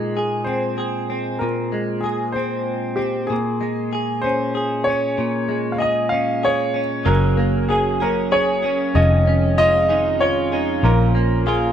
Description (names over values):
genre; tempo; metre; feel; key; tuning
six-eight pop ballad; 64 BPM (dotted quarters); 6/8; straight; unclear; A4 = 440 Hz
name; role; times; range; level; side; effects
clear grand piano; melody; 0.0-11.7 s; G4 to F5; -22 LUFS; left 1 dB; none
direct-recorded clean electric guitar; accompaniment; 0.0-11.7 s; F2 to Ab4; -21 LUFS; equal; double-tracked left and right
direct-recorded clean electric guitar; arpeggios; 7.1-11.7 s; F2 to Bb4; -26 LUFS; right 6 dB; spring reverb
vintage muted fingered electric bass; bass; 7.1-11.7 s; F1 to Bb1; -19 LUFS; equal; none
room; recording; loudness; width
light reverb; rough home demo mix; -17 LUFS; side -9 dB against mid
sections
0.0-7.1 A section; 7.1-11.7 B section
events
none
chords
0.0 Ab/Bb; 3.3 Db/Bb; 7.1 Gbadd9; 9.0 Dbadd9/F; 10.8 Bbm